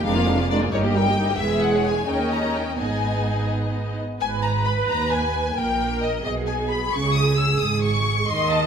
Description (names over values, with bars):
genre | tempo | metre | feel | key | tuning
quick classical-period movement for string orchestra | 88 BPM (dotted quarters) | 6/8 | straight | G# minor | A4 = 444 Hz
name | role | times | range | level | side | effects
warm symphonic violin section | melody | 0.0-8.7 s | C#5 to E6 | -26 LUFS | left 5 dB | none
warm symphonic violin section | second line | 0.0-8.7 s | E#4 to E6 | -29 LUFS | left 3 dB | none
warm studio viola section | accompaniment | 0.0-8.7 s | G3 to Eb5 | -24 LUFS | right 2 dB | none
rich symphonic cello section | bass | 0.0-8.7 s | D#2 to Eb3 | -27 LUFS | right 2 dB | none
rich symphonic double bass section | bass | 0.0-8.7 s | E1 to D#2 | -27 LUFS | right 3 dB | none
room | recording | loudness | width
wet recital hall reverb, RT60 1.6 s | none | -20 LUFS | side -7 dB against mid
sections
0.0-4.2 A section; 4.2-8.7 A section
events
none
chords
0.1 A#7/E#; 0.7 D#/G; 1.4 E; 2.1 D#5; 2.8 G#m; 5.6 D#/A#; 6.3 G#m/B; 6.9 C#5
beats
| 0.05 0.72 | 1.40 2.09 | 2.79 3.50 | 4.21 4.89 | 5.57 6.25 | 6.93 7.61 | 8.29